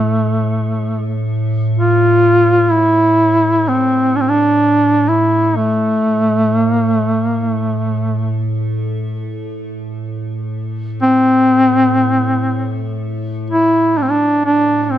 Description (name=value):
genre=caucasian folk, Caucasian lament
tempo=free time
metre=none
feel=none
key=A minor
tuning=A4 = 439 Hz
part: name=warm duduk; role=melody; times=0.0-15.0 s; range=A3 to F4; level=-12 LUFS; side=equal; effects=none
part: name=icy glass pad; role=drone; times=0.0-15.0 s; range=A2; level=-19 LUFS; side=equal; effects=chorus, built-in reverb
room=light reverb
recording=close, detailed microphones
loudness=-12 LUFS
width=side -11 dB against mid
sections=0.0-9.5 A section; 9.5-15.0 B section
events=none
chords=none